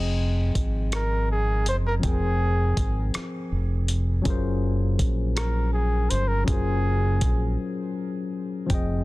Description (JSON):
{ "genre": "slow six-eight R&B", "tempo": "54 BPM (dotted quarters)", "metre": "6/8", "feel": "straight", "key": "unclear", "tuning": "A4 = 440 Hz", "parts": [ { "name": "tine electric piano", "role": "accompaniment", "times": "0.0-9.0 s", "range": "F3 to G5", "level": "-30 LUFS", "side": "left 3 dB", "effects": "overdrive" }, { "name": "deep dub fingered electric bass", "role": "bass", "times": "0.0-9.0 s", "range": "F1 to Bb1", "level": "-24 LUFS", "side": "equal", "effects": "none" }, { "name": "dusty soul sampler-style drum kit", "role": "drums", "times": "0.6-8.9 s", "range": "hi-hat, kick drum, rim click", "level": "-26 LUFS", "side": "equal", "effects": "soft clipping on snare" }, { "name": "breathy flugelhorn", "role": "melody", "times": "1.0-7.5 s", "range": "Ab4 to C5", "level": "-30 LUFS", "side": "right 1 dB", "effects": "ping-pong delay" } ], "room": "digital ambience", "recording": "dense, heavily limited modern master", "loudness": "-22 LUFS", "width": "side -19 dB against mid", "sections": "0.0-9.0 A section", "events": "break 7.6-8.7", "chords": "0.0 Fm9; 4.3 Gbmaj9#11" }